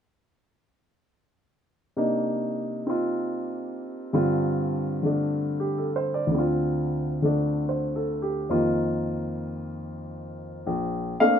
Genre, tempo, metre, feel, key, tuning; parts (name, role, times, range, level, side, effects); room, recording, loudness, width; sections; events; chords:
solo jazz; 110 BPM; 4/4; swing 67% on 8ths; A4 = 441 Hz
warm upright piano; solo; 2.0-11.4 s; Bb1 to F5; -24 LUFS; equal
moderate studio reverb, RT60 0.6 s; minimal, uncompressed stereo recording; -24 LUFS; side -8 dB against mid
2.0-10.7 A section
2.0 Cm9; 4.1 G7sus4; 6.3 Dm7; 8.5 F7sus4; 10.7 Bbmaj9